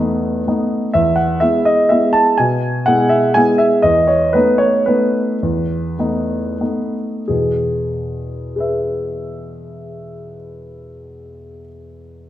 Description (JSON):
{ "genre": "classical, piano waltz", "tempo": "84-132 BPM", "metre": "3/4", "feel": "rubato", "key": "E major", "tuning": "A4 = 440 Hz", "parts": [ { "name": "warm concert grand piano", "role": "solo", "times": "0.0-12.3 s", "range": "E2 to A5", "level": "-15 LUFS", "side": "equal", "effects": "none" } ], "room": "wet recital hall reverb, RT60 1.3 s", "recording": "none", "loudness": "-14 LUFS", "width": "side -13 dB against mid", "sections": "0.0-7.3 A section; 7.3-11.0 B section", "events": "slowing down 3.1-7.3", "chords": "0.0 B7/E; 0.9 E; 3.8 B7/E; 7.3 E" }